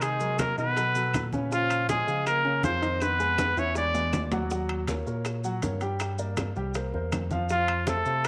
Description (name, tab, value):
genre	Afro-Cuban jazz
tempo	160 BPM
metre	4/4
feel	straight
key	unclear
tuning	A4 = 441 Hz
part	warm trumpet	melody	0.0-4.3, 7.5-8.3 s	F4 to D5	-29 LUFS	equal	none
part	trombone with cup mute	second line	0.0-4.3, 7.5-8.3 s	F3 to D4	-41 LUFS	equal	slapback echo
part	dark grand piano	accompaniment	0.0-8.3 s	Db3 to G5	-35 LUFS	equal	none
part	bell-like tine electric piano	bass	0.0-8.3 s	C2 to Db3	-34 LUFS	equal	phaser
part	bongos	percussion	0.0-8.3 s	none	-41 LUFS	equal	none
part	claves	percussion	0.0-8.3 s	none	-47 LUFS	equal	none
part	congas	percussion	0.0-8.3 s	none	-39 LUFS	equal	none
part	maracas	percussion	0.0-8.3 s	none	-47 LUFS	equal	none
part	timbales	percussion	0.0-8.3 s	none	-40 LUFS	equal	none
room	wet spring reverb, RT60 1.7 s, studio reverb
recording	none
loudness	-27 LUFS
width	mono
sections	0.0-8.3 A section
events	drum fill 3.0-4.5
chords	0.0 Cm7b5; 0.8 Cbsus2; 1.5 Bbm7; 3.0 Fm7b5; 3.8 E7; 4.5 Ebm7; 6.0 Gm; 6.8 C7; 7.5 F